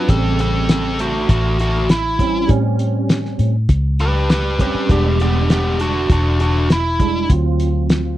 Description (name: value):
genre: straight-eighth soul blues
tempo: 100 BPM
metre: 4/4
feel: straight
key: unclear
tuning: A4 = 441 Hz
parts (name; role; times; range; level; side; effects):
- biting lead guitar; melody; 0.0-7.3 s; A3 to B4; -19 LUFS; equal; overdrive
- barky tine electric piano; accompaniment; 0.0-8.2 s; C#3 to E#4; -22 LUFS; right 4 dB; ensemble chorus
- vintage muted fingered electric bass; bass; 0.1-8.2 s; E1 to A2; -18 LUFS; equal; none
- cloth-damped thuddy drum kit; drums; 0.1-8.0 s; hi-hat, kick drum, snare drum; -16 LUFS; equal; none
room: little or no reverb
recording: dry, close 1970s-style studio recording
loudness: -14 LUFS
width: side -14 dB against mid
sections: 0.0-8.2 A section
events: none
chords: 0.1 A7#9; 4.9 E7#9; 7.3 D7#9